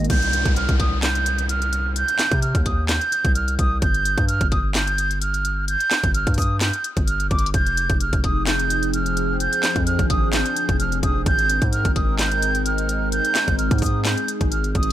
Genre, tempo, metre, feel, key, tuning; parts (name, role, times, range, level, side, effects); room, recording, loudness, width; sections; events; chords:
hip hop, trap; 129 BPM; 4/4; half-time; C minor; A4 = 441 Hz
breathy concert flute; melody; 0.0-14.9 s; D6 to G6; -22 LUFS; right 2 dB; low-pass filter, ping-pong delay
dark analog pad; sustained chords; 0.0-0.1, 7.8-14.9 s; F3 to Bb4; -27 LUFS; left 1 dB; chorus, phaser
distorted 808-style bass; bass; 0.0-14.9 s; F1 to C3; -24 LUFS; equal; distortion
trap drum kit; drums; 0.0-14.9 s; crash cymbal, handclaps, hi-hat, kick drum, snare drum; -22 LUFS; equal
downlifter; sound effects; 0.1-3.8 s; -31 LUFS; equal
little or no reverb; -18 LUFS; side -12 dB against mid
0.1-14.9 A section
0.1 Cm; 3.8 Ebadd9/G (rootless); 7.5 Fm7; 11.3 Abadd9